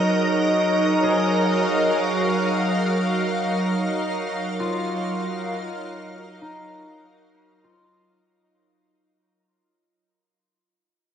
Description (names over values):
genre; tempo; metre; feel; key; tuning
ambient; 50 BPM; 4/4; straight; F# major; A4 = 440 Hz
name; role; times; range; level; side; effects
soft additive organ-like pad; sustained chords; 0.0-8.3 s; F#3 to E#5; -20 LUFS; right 1 dB; ensemble chorus, built-in reverb, cassette tape, shimmer reverb
concert harp; arpeggios; 0.0-10.2 s; D#4 to D#5; -32 LUFS; equal; cassette tape, tape echo, shimmer reverb
room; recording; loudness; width
wet spring reverb, RT60 1.4 s, small room ambience; home recording on cassette; -20 LUFS; side -8 dB against mid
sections
0.0-8.3 A section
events
fade-out 1.8-8.3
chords
0.0 F#69